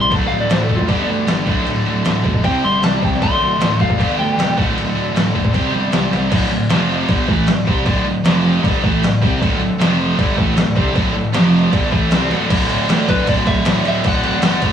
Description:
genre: hard rock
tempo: 155 BPM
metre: 4/4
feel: straight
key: unclear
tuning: A4 = 440 Hz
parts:
  - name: lightly driven lead guitar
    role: melody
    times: 0.0-4.6, 13.1-14.7 s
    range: D4 to C6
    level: -20 LUFS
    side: left 2 dB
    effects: none
  - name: bright tonewheel organ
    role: sustained chords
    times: 0.0-6.3, 9.4-12.5 s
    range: F3 to E5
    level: -31 LUFS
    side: left 1 dB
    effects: none
  - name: high-gain distorted guitar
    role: riff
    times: 0.0-14.7 s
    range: D2 to C4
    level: -26 LUFS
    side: left 5 dB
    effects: distortion
  - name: high-gain distorted guitar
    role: riff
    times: 0.0-14.7 s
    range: D2 to C4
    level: -22 LUFS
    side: right 4 dB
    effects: distortion
  - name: fuzz fingered electric bass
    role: bass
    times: 0.0-14.7 s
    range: D1 to D2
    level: -21 LUFS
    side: right 1 dB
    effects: overdrive
  - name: high-gain distorted guitar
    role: riff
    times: 0.1-14.7 s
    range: D2 to C5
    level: -20 LUFS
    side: equal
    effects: distortion
  - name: trip hop sampler-style drum kit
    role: drums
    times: 0.1-14.7 s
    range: crash cymbal, kick drum, snare drum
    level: -18 LUFS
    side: equal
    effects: overdrive
room: moderate booth ambience, RT60 0.2 s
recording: rough rehearsal-room recording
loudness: -14 LUFS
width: side -8 dB against mid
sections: 0.0-6.3 A section; 6.3-12.5 B section; 12.5-14.7 C section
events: lead electric guitar solo 0.0-6.3; drum fill 6.1, 12.3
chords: 0.1 D; 0.9 G; 1.5 D; 2.4 C; 3.2 D; 4.0 G; 4.6 D; 5.5 C; 6.3 D5; 6.7 F5; 7.1 D5; 8.2 F5; 8.6 D5; 9.8 F5; 10.2 D5; 11.3 F5; 11.7 D5; 12.5 D

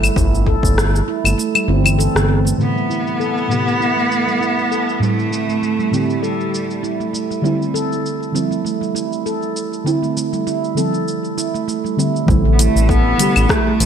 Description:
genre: organic downtempo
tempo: 99 BPM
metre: 4/4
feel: swing 55% on 16ths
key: A minor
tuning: A4 = 437 Hz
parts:
  - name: handpan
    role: arpeggios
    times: 0.0-13.9 s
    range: E3 to A4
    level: -21 LUFS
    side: right 3 dB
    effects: low-pass filter, ping-pong delay
  - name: smooth synth bass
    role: bass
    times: 0.0-2.5, 12.3-13.9 s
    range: G1 to A1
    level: -15 LUFS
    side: equal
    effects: none
  - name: afro-pop drum kit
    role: drums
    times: 0.0-13.9 s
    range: claves, hi-hat, rim click, shaker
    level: -22 LUFS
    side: left 2 dB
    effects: low-pass filter on perc, low-pass filter on snare, low-pass filter on hats, gated reverb
  - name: electronic kick drum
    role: drums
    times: 0.2-0.7, 12.3-13.6 s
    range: none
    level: -19 LUFS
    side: equal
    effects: overdrive
  - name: clear cello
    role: melody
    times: 2.6-7.1, 12.5-13.9 s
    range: G3 to B3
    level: -20 LUFS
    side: left 1 dB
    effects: digital delay
  - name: deep mellow chord stab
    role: accompaniment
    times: 2.6-13.9 s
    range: A2 to G4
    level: -21 LUFS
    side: right 1 dB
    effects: chorus, sidechain pumping, ping-pong delay
room: moderate plate reverb, RT60 2.1 s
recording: bright 1980s-style digital production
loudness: -15 LUFS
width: side -8 dB against mid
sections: 0.0-2.6 A section; 2.6-12.3 B section; 12.3-13.9 C section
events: kick drops out 2.0-2.6; filter sweep on handpan 2.6-12.3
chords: 0.0 Gsus2; 2.6 Am9; 7.4 G9sus4; 12.3 Am9

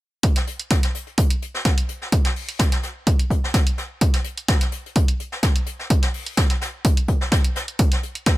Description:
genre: piano house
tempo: 127 BPM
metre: 4/4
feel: swing 53% on 16ths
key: none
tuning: none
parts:
  - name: electronic hi-hat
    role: drums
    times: 0.2-8.4 s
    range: none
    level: -26 LUFS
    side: right 2 dB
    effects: none
  - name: electronic kick drum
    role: drums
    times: 0.2-8.4 s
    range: none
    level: -18 LUFS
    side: equal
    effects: none
  - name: jazz brush drum kit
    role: drums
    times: 0.2-8.4 s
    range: hi-hat, snare drum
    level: -28 LUFS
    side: left 1 dB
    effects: high-pass filter on hats, high-pass filter on snare, high-pass filter on room
room: little or no reverb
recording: none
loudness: -19 LUFS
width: side -17 dB against mid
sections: 0.2-8.4 A section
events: none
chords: none

